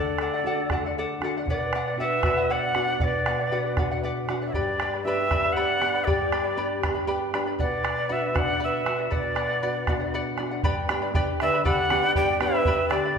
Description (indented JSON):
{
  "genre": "andean folk, Andean ensemble",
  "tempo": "79 BPM (dotted quarters)",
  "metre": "6/8",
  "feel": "straight",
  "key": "unclear",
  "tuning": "A4 = 439 Hz",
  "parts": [
    { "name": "breathy mellow quena", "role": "melody", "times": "0.0-13.2 s", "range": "D5 to G5", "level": "-26 LUFS", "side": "equal", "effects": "none" },
    { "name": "reedy large quena", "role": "second line", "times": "0.0-13.2 s", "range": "G4 to D5", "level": "-30 LUFS", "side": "equal", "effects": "none" },
    { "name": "charango", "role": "accompaniment", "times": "0.0-13.2 s", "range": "G4 to B5", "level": "-30 LUFS", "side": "left 1 dB", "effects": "none" },
    { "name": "nylon-string guitar", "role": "accompaniment", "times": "0.0-13.2 s", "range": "G2 to G4", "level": "-30 LUFS", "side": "left 1 dB", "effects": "none" },
    { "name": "bombo", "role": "percussion", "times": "0.2-13.0 s", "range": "none", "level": "-29 LUFS", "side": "right 1 dB", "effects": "none" }
  ],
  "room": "wet large studio reverb, RT60 1.4 s",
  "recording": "band playing live in one room",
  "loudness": "-22 LUFS",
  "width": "side -6 dB against mid",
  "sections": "0.0-10.6 A section; 10.6-13.2 B section",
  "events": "none",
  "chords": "0.0 D; 1.5 Bm; 4.5 G; 7.6 Bm; 10.6 G",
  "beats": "0.71 | 1.48 2.24 | 3.01 3.78 | 4.54 5.31 | 6.07 6.84 | 7.60 8.36 | 9.12 9.88 | 10.64 11.40 | 12.16 12.92"
}